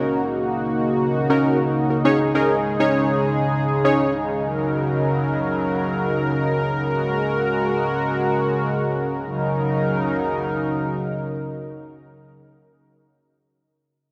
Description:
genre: pop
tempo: 100 BPM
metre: 4/4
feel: straight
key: Eb minor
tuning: A4 = 439 Hz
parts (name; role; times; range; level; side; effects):
- warm analog keys; accompaniment; 0.0-4.1 s; Db4 to Db5; -24 LUFS; equal; chorus
- chorused pulse-width pad; sustained chords; 0.0-12.4 s; Db3 to Bb4; -23 LUFS; equal; none
room: wet lush hall reverb, RT60 3.0 s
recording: dark, warm production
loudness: -21 LUFS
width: mono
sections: 0.0-9.2 A section; 9.2-11.6 B section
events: none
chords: 0.0 Ebm7; 2.0 Absus4; 4.4 Ebm7; 6.8 Gbadd9; 9.2 Ebm7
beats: 0.25 0.85 1.45 | 2.05 2.65 3.25 3.85 | 4.45 5.05 5.65 6.25 | 6.85 7.45 8.05 8.65 | 9.25 9.85 10.45 11.05

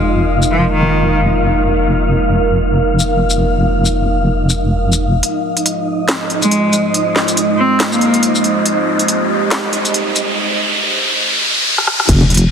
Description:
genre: deep dubstep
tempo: 140 BPM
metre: 4/4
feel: swing 58% on 16ths, half-time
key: F minor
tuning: A4 = 440 Hz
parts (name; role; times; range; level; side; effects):
- deep dark ambient pad; sustained chords; 0.0-12.5 s; Ab3 to C5; -20 LUFS; right 2 dB; chorus, built-in reverb
- deep soft wobble bass; bass; 0.0-5.2, 12.1-12.5 s; F1; -15 LUFS; equal; chorus
- wind-like tuned noise texture; texture; 0.0-10.4 s; Eb4 to F5; -19 LUFS; equal; built-in reverb
- garage drum kit; drums; 0.4-12.5 s; crash cymbal, hi-hat, rim click, shaker, snare drum; -18 LUFS; left 1 dB; high-pass filter on perc, high-pass filter on hats, high-pass filter on snare, high-pass filter on cymbals, high-pass filter on room
- clear cello; melody; 0.5-1.2, 6.4-8.3 s; Eb3 to C4; -18 LUFS; left 1 dB; low-pass filter, dub echo
- riser; sound effects; 7.5-12.1 s; none; -18 LUFS; equal; none
- electronic kick drum; drums; 12.1-12.2 s; none; -15 LUFS; equal; distortion
- congas; percussion; 12.2-12.4 s; none; -16 LUFS; left 3 dB; none
room: light reverb, digital ambience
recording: heavily compressed radio sound, high-pass filter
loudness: -12 LUFS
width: side -7 dB against mid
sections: 0.0-5.2 A section; 5.2-12.1 B section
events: build-up 5.2-12.1; filter sweep 5.2-12.1; riser 7.5-12.1; drum fill 11.8-12.1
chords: 0.0 Fm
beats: | 0.09 0.52 0.94 1.37 | 1.80 2.23 2.66 3.09 | 3.52 3.94 4.37 4.80 | 5.23 5.66 6.09 6.51 | 6.94 7.37 7.80 8.23 | 8.66 9.09 9.52 9.94 | 10.37 10.80 11.23 11.66 | 12.09

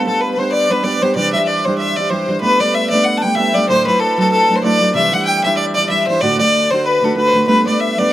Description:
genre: celtic folk, Celtic reel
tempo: 190 BPM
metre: 4/4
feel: swing 58% on 8ths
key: G major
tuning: A4 = 445 Hz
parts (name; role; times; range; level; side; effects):
- clear fiddle; melody; 0.0-8.1 s; A4 to A5; -15 LUFS; equal; slapback echo
- cimbalom; second line; 0.0-8.1 s; A4 to A5; -24 LUFS; right 3 dB; slapback echo
- rich fiddle; second line; 0.0-8.1 s; A4 to G5; -22 LUFS; left 6 dB; slapback echo
- fingerpicked steel-string acoustic guitar; accompaniment; 0.0-8.1 s; D2 to G4; -18 LUFS; right 2 dB; slapback echo
room: little or no reverb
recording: recorded outdoors, with no room sound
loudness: -12 LUFS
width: side -13 dB against mid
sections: 0.0-2.4 A section; 2.4-8.1 B section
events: none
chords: 0.0 G; 1.2 Cadd9; 2.4 Gadd9; 3.7 Dadd9; 5.0 Cadd9; 6.2 D; 7.5 Gadd9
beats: 0.21 0.52 0.84 | 1.16 1.48 1.79 2.11 | 2.42 2.74 3.06 3.37 | 3.69 4.00 4.32 4.64 | 4.95 5.27 5.58 5.90 | 6.22 6.53 6.85 7.16 | 7.48 7.79 8.11

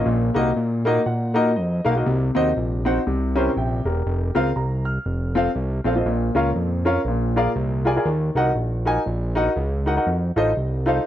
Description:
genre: uptempo gospel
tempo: 120 BPM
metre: 4/4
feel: swing 58% on 8ths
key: unclear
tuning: A4 = 440 Hz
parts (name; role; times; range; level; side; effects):
- warm grand piano; accompaniment; 0.0-11.0 s; Bb2 to F6; -21 LUFS; left 1 dB; none
- fat analog bass; bass; 0.0-11.0 s; E1 to Bb2; -23 LUFS; right 1 dB; none
room: studio reverb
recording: dry, close 1970s-style studio recording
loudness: -19 LUFS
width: side -12 dB against mid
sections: 0.0-11.1 A section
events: grand piano fill 0.6-2.1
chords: 0.1 Ebm/Bb; 2.1 Cdim; 3.1 C7b9; 4.1 Fsus4; 5.1 F; 6.1 Bbm; 7.1 Bb7; 8.1 Ebm; 10.1 F7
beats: | 0.06 0.56 1.06 1.56 | 2.06 2.56 3.06 3.56 | 4.06 4.56 5.06 5.56 | 6.06 6.56 7.07 7.57 | 8.07 8.57 9.07 9.57 | 10.07 10.57

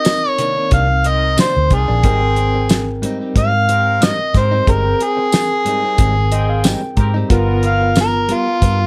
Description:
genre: straight-eighth soul blues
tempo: 91 BPM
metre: 4/4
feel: straight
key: unclear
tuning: A4 = 440 Hz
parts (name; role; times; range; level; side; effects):
- overdriven harmonica; melody; 0.0-8.9 s; F4 to F5; -19 LUFS; equal; none
- tine electric piano; accompaniment; 0.0-8.9 s; B3 to Bb5; -25 LUFS; equal; medium tremolo
- bright horn section; sustained chords; 0.0-8.0 s; B3 to G5; -31 LUFS; equal; none
- cloth-damped thuddy drum kit; drums; 0.0-8.8 s; hi-hat, kick drum, snare drum, tambourine; -18 LUFS; equal; none
- direct-recorded clean electric guitar; stabs; 0.1-8.9 s; Ab2 to A#4; -28 LUFS; equal; none
- vintage muted fingered electric bass; bass; 0.7-8.9 s; G1 to Ab2; -20 LUFS; equal; none
room: light reverb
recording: none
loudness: -15 LUFS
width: mono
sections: 0.0-8.9 A section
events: harmonica solo 0.0-8.9; tine electric piano fill 6.0-7.3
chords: 0.0 Cm9; 2.0 Abmaj7; 7.3 G7#9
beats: 0.07 0.72 1.38 | 2.04 2.70 3.36 4.02 | 4.68 5.33 5.99 6.65 | 7.31 7.96 8.62

